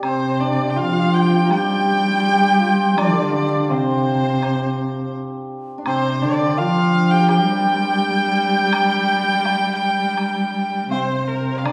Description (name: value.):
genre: chinese traditional, Chinese chamber ensemble.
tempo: 83 BPM.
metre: 4/4.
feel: rubato.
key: G yu mode.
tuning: A4 = 444 Hz.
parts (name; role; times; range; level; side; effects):
clear erhu; melody; 0.0-11.7 s; Bb4 to G5; -24 LUFS; equal; none.
bright dizi; second line; 0.0-11.7 s; C5 to Bb5; -29 LUFS; equal; none.
dark cello; second line; 0.0-11.7 s; C3 to G3; -22 LUFS; equal; none.
hammered dulcimer; second line; 0.0-11.7 s; C4 to Bb4; -25 LUFS; equal; none.
woodblock; percussion; 0.0-11.7 s; none; -35 LUFS; equal; none.
room: wet recital hall reverb, RT60 1.6 s.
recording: heard from further back in the room.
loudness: -18 LUFS.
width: mono.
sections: 0.0-11.6 A section.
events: none.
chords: none.